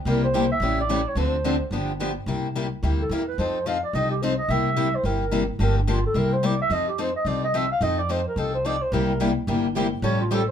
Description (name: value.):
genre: acoustic string swing (jazz manouche).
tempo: 217 BPM.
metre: 4/4.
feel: swing 58% on 8ths.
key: C mixolydian.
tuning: A4 = 440 Hz.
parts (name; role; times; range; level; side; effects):
breathy clarinet; melody; 0.1-10.5 s; D4 to F5; -25 LUFS; right 2 dB; none.
picked steel-string acoustic guitar; accompaniment; 0.1-10.4 s; C3 to A4; -27 LUFS; left 3 dB; none.
picked steel-string acoustic guitar; accompaniment; 0.1-2.1, 8.9-10.4 s; C3 to A4; -27 LUFS; equal; none.
upright bass; bass; 0.1-10.5 s; G1 to F2; -26 LUFS; equal; none.
room: moderate club reverb, RT60 0.7 s.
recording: minimal, uncompressed stereo recording.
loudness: -21 LUFS.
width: side -8 dB against mid.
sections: 0.0-2.3 A section; 2.3-10.5 B section.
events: clarinet solo 2.3-10.5.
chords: 0.1 C7; 0.6 A7; 1.2 Dm7; 1.7 G7; 2.3 C7; 3.4 F7; 4.5 C7; 5.6 Gm7; 6.2 C7; 6.7 F7; 8.9 C7.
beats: | 0.06 0.34 0.61 0.89 | 1.17 1.45 1.72 2.00 | 2.28 2.55 2.83 3.11 | 3.38 3.66 3.94 4.21 | 4.49 4.77 5.04 5.32 | 5.60 5.87 6.15 6.43 | 6.71 6.98 7.26 7.54 | 7.81 8.09 8.37 8.64 | 8.92 9.20 9.47 9.75 | 10.03 10.30.